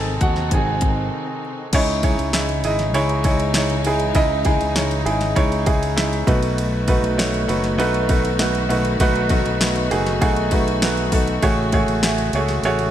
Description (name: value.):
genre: piano-driven pop.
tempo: 99 BPM.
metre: 4/4.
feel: straight.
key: C# minor.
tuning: A4 = 440 Hz.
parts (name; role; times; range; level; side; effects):
felt-muted upright piano; accompaniment; 0.0-12.9 s; A2 to A5; -20 LUFS; right 2 dB; none.
rich studio string section; sustained chords; 0.0-12.9 s; B#2 to F#4; -29 LUFS; left 4 dB; none.
fingered electric bass; bass; 0.0-12.9 s; F#1 to D#2; -24 LUFS; left 1 dB; none.
house drum kit; drums; 0.2-12.9 s; crash cymbal, hi-hat, kick drum, ride cymbal, snare drum; -22 LUFS; left 1 dB; none.
room: light reverb, digital ambience.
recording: bright 1980s-style digital production.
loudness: -17 LUFS.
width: side -11 dB against mid.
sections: 0.0-1.7 A section; 1.7-12.9 B section.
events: felt piano solo 0.0-1.7; break 1.1-1.7.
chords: 0.0 G#; 1.7 C#madd9; 6.3 B7; 11.4 F#madd9/A.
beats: 0.51 1.12 | 1.73 2.33 2.94 3.54 | 4.15 4.76 5.36 5.97 | 6.58 7.18 7.79 8.39 | 9.00 9.61 10.21 10.82 | 11.43 12.03 12.64.